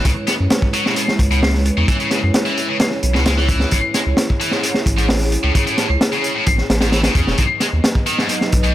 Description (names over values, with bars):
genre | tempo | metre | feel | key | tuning
breakbeat, breaks | 131 BPM | 4/4 | straight | C# minor | A4 = 439 Hz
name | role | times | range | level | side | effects
dark analog pad | sustained chords | 0.0-8.7 s | F#3 to D#5 | -24 LUFS | right 1 dB | chorus, vintage 12-bit sampler grit, sidechain pumping
scooped high-gain guitar | riff | 0.0-8.7 s | G#2 to B3 | -20 LUFS | left 2 dB | distortion, tape echo
crunchy breakbeat drum kit | drums | 0.0-8.7 s | hi-hat, kick drum, snare drum | -18 LUFS | equal | none
saturated sub bass | bass | 0.1-8.7 s | E1 to F#2 | -18 LUFS | equal | tube saturation
room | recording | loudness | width
small room ambience | none | -14 LUFS | side -13 dB against mid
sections
0.0-8.7 A section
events
none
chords
0.0 C#m7; 3.7 Amaj7; 7.4 B